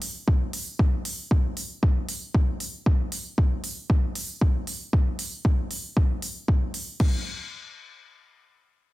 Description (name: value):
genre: deep house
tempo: 116 BPM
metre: 4/4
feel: swing 60% on 16ths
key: none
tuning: none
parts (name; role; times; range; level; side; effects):
- house drum kit; drums; 0.0-7.1 s; crash cymbal, hi-hat; -33 LUFS; equal; small room ambience
- electronic kick drum; drums; 0.3-7.1 s; none; -22 LUFS; equal; overdrive, small room ambience
room: little or no reverb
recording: dense, heavily limited modern master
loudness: -23 LUFS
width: side -18 dB against mid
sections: 0.0-7.0 A section; 7.0-8.9 B section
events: none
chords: none